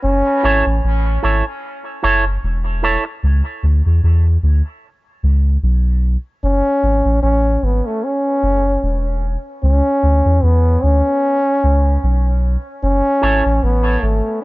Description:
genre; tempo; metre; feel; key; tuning
dub reggae; 75 BPM; 4/4; swing 56% on 16ths; F# minor; A4 = 440 Hz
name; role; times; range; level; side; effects
dark trombone; melody; 0.0-0.8, 6.4-14.4 s; A3 to C#4; -17 LUFS; equal; dub echo
soft dub sub bass; bass; 0.0-14.2 s; E1 to E2; -14 LUFS; equal; none
electric guitar with an envelope filter; accompaniment; 0.4-3.1, 13.2-13.4 s; E4 to C#5; -20 LUFS; right 3 dB; dub echo
room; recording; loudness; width
light reverb, small room ambience; nothing above 7.6 kHz; -14 LUFS; side -20 dB against mid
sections
0.0-14.4 A section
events
break 0.0-6.4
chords
0.0 F#m7; 3.2 Bmadd9; 6.4 F#m7; 9.6 Bmadd9; 12.8 F#m7 (rootless)

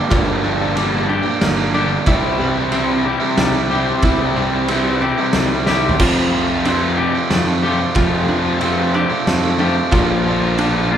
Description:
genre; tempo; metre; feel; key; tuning
post-rock; 92 BPM; 3/4; straight; unclear; A4 = 440 Hz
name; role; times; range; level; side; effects
string-like resonator pluck; arpeggios; 0.0-11.0 s; C4 to F4; -26 LUFS; right 2 dB; none
twangy electric guitar; arpeggios; 0.0-11.0 s; G2 to G4; -24 LUFS; left 2 dB; none
crunchy overdriven guitar; riff; 0.0-11.0 s; F2 to F4; -20 LUFS; right 4 dB; none
distorted electric guitar; riff; 0.1-11.0 s; F2 to F4; -21 LUFS; left 5 dB; distortion
picked electric bass; bass; 0.1-11.0 s; G1 to F2; -23 LUFS; left 1 dB; none
oversized low-tuned drum kit; drums; 0.1-10.7 s; crash cymbal, kick drum, ride cymbal, snare drum, splash cymbal, toms; -20 LUFS; equal; none
room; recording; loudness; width
moderate large studio reverb, RT60 1.1 s; band playing live in one room; -14 LUFS; side -9 dB against mid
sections
0.0-11.0 A section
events
drum fill 5.7-6.0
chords
0.0 Gm7; 2.1 C; 6.0 Fadd9; 9.9 Bb

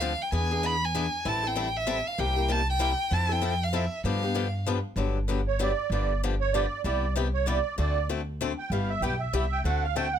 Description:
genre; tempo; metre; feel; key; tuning
acoustic string swing (jazz manouche); 193 BPM; 3/4; swing 60% on 8ths; G major from 5.0 s; A4 = 440 Hz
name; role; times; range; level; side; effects
warm violin; melody; 0.0-4.6 s; E5 to B5; -29 LUFS; right 1 dB; none
picked swing-style acoustic guitar; accompaniment; 0.0-10.1 s; C3 to A4; -31 LUFS; left 6 dB; none
upright bass; bass; 0.0-10.2 s; G1 to G2; -29 LUFS; equal; none
musette accordion; second line; 5.5-10.2 s; C#5 to G5; -29 LUFS; right 8 dB; none
room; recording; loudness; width
little or no reverb; close, detailed microphones; -25 LUFS; side -9 dB against mid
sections
0.0-5.0 A section; 5.0-10.2 B section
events
accordion solo 5.0-10.2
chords
0.3 E7; 1.3 Am7; 2.2 C7; 3.1 Fmaj7; 4.0 G7; 5.0 Gmaj7; 5.9 G7; 6.8 Cmaj7; 7.8 D7; 8.7 G6; 9.6 D7

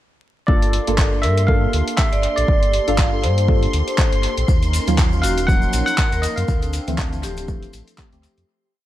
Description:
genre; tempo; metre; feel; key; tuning
deep house; 120 BPM; 4/4; swing 57% on 16ths; unclear; A4 = 441 Hz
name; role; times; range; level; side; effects
barky tine electric piano; melody; 0.5-7.8 s; D5 to Gb5; -25 LUFS; equal; analog delay
hollow soft pad; sustained chords; 0.5-8.5 s; Bb3 to Bb4; -30 LUFS; equal; chorus, sidechain pumping
deep mellow chord stab; stabs; 0.5-8.5 s; E3 to A4; -26 LUFS; equal; chorus, phaser, sidechain pumping, analog delay
sub bass with octave; bass; 0.5-8.4 s; D1 to G2; -21 LUFS; equal; tube saturation, sidechain pumping
electronic kick drum; drums; 0.5-8.1 s; none; -18 LUFS; equal; none
soft string machine; texture; 0.7-8.5 s; C6; -32 LUFS; equal; ensemble chorus, sidechain pumping
deep house drum kit; drums; 0.6-8.5 s; handclaps, hi-hat; -26 LUFS; left 1 dB; analog delay
vibraphone with medium mallets; melody; 1.2-7.7 s; Gb4 to F5; -26 LUFS; equal; analog delay
maracas; percussion; 4.5-8.5 s; none; -34 LUFS; left 3 dB; none
room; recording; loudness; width
little or no reverb; echo-heavy mix, vinyl crackle; -16 LUFS; side -14 dB against mid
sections
0.5-8.5 drop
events
drop 0.5-8.5; fade-out 5.8-8.5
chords
0.5 Gm9; 4.5 Ebm9; 6.5 Dm9

